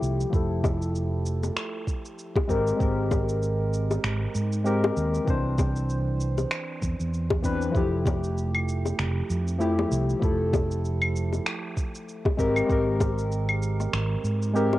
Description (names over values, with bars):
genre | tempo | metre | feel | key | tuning
sunset chillout | 97 BPM | 4/4 | swing 56% on 16ths | unclear | A4 = 440 Hz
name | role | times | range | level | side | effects
soft electric-piano-like synth keys | accompaniment | 0.0-14.8 s | E3 to C5 | -28 LUFS | moving between left 3 dB and right 5 dB | chorus, auto-pan, low-pass filter, cassette tape, analog delay
mellow fretless electric bass | bass | 0.0-14.8 s | F1 to Ab2 | -27 LUFS | right 1 dB | ensemble chorus
electronic shaker, finger snaps and claves | drums | 0.0-14.7 s | none | -33 LUFS | equal | cassette tape
electronic kick drum | drums | 0.3-13.1 s | none | -26 LUFS | right 1 dB | cassette tape
bongos | percussion | 0.6-14.8 s | none | -28 LUFS | left 4 dB | none
room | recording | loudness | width
light reverb | home recording on cassette | -24 LUFS | side -16 dB against mid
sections
0.0-14.8 A section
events
filter sweep on synth keys 0.0-14.8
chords
0.0 Fmaj9; 2.5 Abmaj9; 5.3 Cmaj9; 7.7 Fmaj9; 12.4 Abmaj9